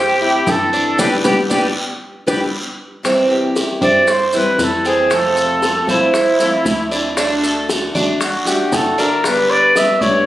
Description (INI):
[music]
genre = latin, Cuban son and guajira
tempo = 116 BPM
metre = 4/4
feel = straight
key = C major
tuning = A4 = 440 Hz
[part]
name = warm trumpet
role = melody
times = 0.0-10.3 s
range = E4 to E5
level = -16 LUFS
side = equal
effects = none
[part]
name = Cuban tres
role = arpeggios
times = 0.0-10.3 s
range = C4 to D5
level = -18 LUFS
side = right 2 dB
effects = none
[part]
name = tight sequencer bass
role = bass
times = 0.0-10.3 s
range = G1 to G2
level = -27 LUFS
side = equal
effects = none
[part]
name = picked steel-string acoustic guitar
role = accompaniment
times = 0.2-10.3 s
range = C3 to G4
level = -21 LUFS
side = left 1 dB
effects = none
[part]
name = bongos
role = percussion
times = 0.2-10.3 s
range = none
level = -26 LUFS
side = left 3 dB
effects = none
[part]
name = guiro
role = percussion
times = 0.5-10.3 s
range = none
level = -25 LUFS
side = equal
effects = none
[part]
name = maracas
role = percussion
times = 0.5-10.3 s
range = none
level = -29 LUFS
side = right 1 dB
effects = none
[part]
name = nylon-string guitar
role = second line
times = 1.0-2.4 s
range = B3 to G4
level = -22 LUFS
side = left 1 dB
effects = none
[sound]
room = wet large studio reverb, RT60 1.3 s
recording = recorded on a phone in the room, studio reverb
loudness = -13 LUFS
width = side -14 dB against mid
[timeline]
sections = 0.0-3.0 A section; 3.0-10.3 B section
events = band accent 1.0-3.0; drum fill 2.8; trumpet solo 3.0-10.3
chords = 0.0 Am; 1.0 G; 3.0 C; 5.1 F; 7.2 D; 9.2 G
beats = 0.47 | 0.98 1.50 2.02 2.53 | 3.05 3.57 4.08 4.60 | 5.12 5.63 6.15 6.66 | 7.18 7.70 8.21 8.73 | 9.24 9.76